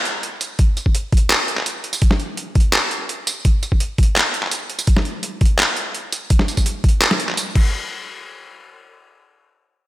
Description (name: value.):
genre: drum and bass.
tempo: 168 BPM.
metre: 4/4.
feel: half-time.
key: none.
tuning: none.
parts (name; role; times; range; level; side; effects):
boom bap sampler-style drum kit; drums; 0.1-7.6 s; crash cymbal, handclaps, hi-hat, snare drum, tambourine; -20 LUFS; equal; overdrive.
electronic kick drum; drums; 0.6-7.6 s; none; -15 LUFS; equal; overdrive.
room: moderate lush hall reverb, RT60 1.7 s.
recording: dreamy mix soaked in reverb.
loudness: -16 LUFS.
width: side -16 dB against mid.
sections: 0.0-7.7 A section; 7.7-9.2 B section.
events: none.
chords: none.